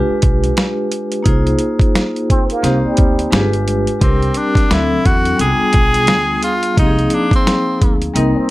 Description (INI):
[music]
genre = hip hop, jazz-hop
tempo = 87 BPM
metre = 4/4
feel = swing 61% on 16ths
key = unclear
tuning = A4 = 442 Hz
[part]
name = vibraphone with medium hard mallets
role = accompaniment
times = 0.0-8.5 s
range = F3 to C5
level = -17 LUFS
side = left 1 dB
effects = none
[part]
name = upright bass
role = bass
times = 0.0-8.4 s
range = G1 to E2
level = -19 LUFS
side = equal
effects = none
[part]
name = dusty soul sampler-style drum kit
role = drums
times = 0.2-8.4 s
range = hi-hat, kick drum, snare drum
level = -15 LUFS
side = equal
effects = none
[part]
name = trombone with plunger mute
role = second line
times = 2.3-3.3, 8.2-8.5 s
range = G3 to Eb4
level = -21 LUFS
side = right 2 dB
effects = slapback echo
[part]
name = bright tenor saxophone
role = melody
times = 4.0-8.0 s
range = C4 to Ab4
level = -17 LUFS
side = equal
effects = slapback echo
[sound]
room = light reverb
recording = none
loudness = -12 LUFS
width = side -18 dB against mid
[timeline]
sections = 0.0-8.5 A section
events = none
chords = 0.0 G7b9; 1.3 Ab69/C; 2.6 Eb6/C; 3.3 G7b9; 4.0 Csus2; 4.7 D9; 5.4 G7b9; 6.8 Ab69/C